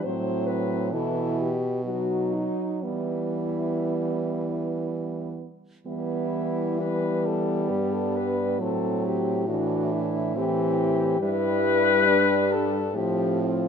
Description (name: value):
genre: classical, lyrical piece for horn quartet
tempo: 58-71 BPM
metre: 3/4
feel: rubato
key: E minor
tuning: A4 = 440 Hz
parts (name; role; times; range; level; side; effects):
- mellow French horn; melody; 0.0-13.7 s; D#4 to C5; -27 LUFS; left 6 dB; none
- warm French horn; second line; 0.0-13.7 s; B3 to E4; -30 LUFS; right 11 dB; none
- warm French horn; accompaniment; 0.0-13.7 s; E3 to G3; -30 LUFS; left 3 dB; none
- clear French horn; bass; 0.0-13.7 s; G2 to E3; -30 LUFS; right 3 dB; none
room: moderate recital hall reverb, RT60 1.7 s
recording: close, detailed microphones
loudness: -23 LUFS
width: side -7 dB against mid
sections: 0.0-5.9 A section; 5.9-13.7 B section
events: none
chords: 0.0 F#dim/A; 0.9 Em/B; 1.9 B; 2.8 Em; 8.6 Am7; 11.2 Em/G; 12.9 F/A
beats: | 0.04 0.93 1.86 | 2.84 3.86 4.87 | 5.86 6.79 7.70 | 8.60 9.48 10.35 | 11.20 12.06 12.93